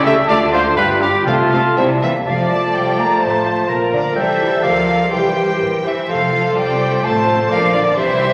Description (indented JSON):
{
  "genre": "quick classical-period movement for symphony orchestra",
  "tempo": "126 BPM",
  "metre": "2/4",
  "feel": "rubato",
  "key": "F major",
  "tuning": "A4 = 440 Hz",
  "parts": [
    { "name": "bright oboe", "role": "second line", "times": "0.0-8.3 s", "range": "F4 to Bb5", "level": "-24 LUFS", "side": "equal", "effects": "none" },
    { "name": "mellow hollow silver concert flute", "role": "second line", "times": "0.0-8.3 s", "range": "D5 to Bb5", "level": "-24 LUFS", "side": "equal", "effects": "none" },
    { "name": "rich symphonic viola section", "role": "accompaniment", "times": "0.0-8.3 s", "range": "G3 to D5", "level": "-26 LUFS", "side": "equal", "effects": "none" },
    { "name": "clear symphonic cello section", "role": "bass", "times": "0.0-8.3 s", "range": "G2 to Bb3", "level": "-26 LUFS", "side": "equal", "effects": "none" },
    { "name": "rich studio double bass section", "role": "bass", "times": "0.0-8.3 s", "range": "F1 to D2", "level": "-30 LUFS", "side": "equal", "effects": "none" },
    { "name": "rich chamber violin section", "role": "melody", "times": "0.1-8.3 s", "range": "A3 to G5", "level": "-31 LUFS", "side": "equal", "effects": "none" },
    { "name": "rich chamber violin section", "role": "second line", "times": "0.1-8.3 s", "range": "C4 to Bb5", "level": "-29 LUFS", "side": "equal", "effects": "none" },
    { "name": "warm clarinet", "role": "second line", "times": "0.1-8.3 s", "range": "E4 to C5", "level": "-26 LUFS", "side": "equal", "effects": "none" },
    { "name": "mellow bassoon", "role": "accompaniment", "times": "0.1-8.3 s", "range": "E3 to A3", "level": "-26 LUFS", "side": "equal", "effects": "none" },
    { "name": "mellow French horn section", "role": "sustained chords", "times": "0.1-8.3 s", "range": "E3 to C5", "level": "-25 LUFS", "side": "equal", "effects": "none" },
    { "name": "clear trumpet", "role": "stabs", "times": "0.1-1.8 s", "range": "F4 to E5", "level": "-21 LUFS", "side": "equal", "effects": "none" },
    { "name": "timpani", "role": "percussion", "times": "1.3-1.7 s", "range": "C3", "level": "-30 LUFS", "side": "equal", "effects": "none" }
  ],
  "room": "wet scoring stage reverb, RT60 1.5 s",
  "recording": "vinyl crackle",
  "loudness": "-16 LUFS",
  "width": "mono",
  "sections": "0.0-2.3 A section; 2.3-8.3 B section",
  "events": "none",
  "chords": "0.3 Dm; 0.8 G7; 1.3 F/C; 1.8 C; 2.3 F; 3.2 F/A; 3.7 Bb; 4.2 C; 4.6 Bb/D; 5.1 C; 6.1 F; 7.0 F/A; 7.5 Bb",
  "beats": "| 0.30 0.78 | 1.28 1.78 | 2.27 2.75 | 3.22 3.69 | 4.16 4.63 | 5.11 5.60 | 6.08 6.57 | 7.04 7.50 | 7.97"
}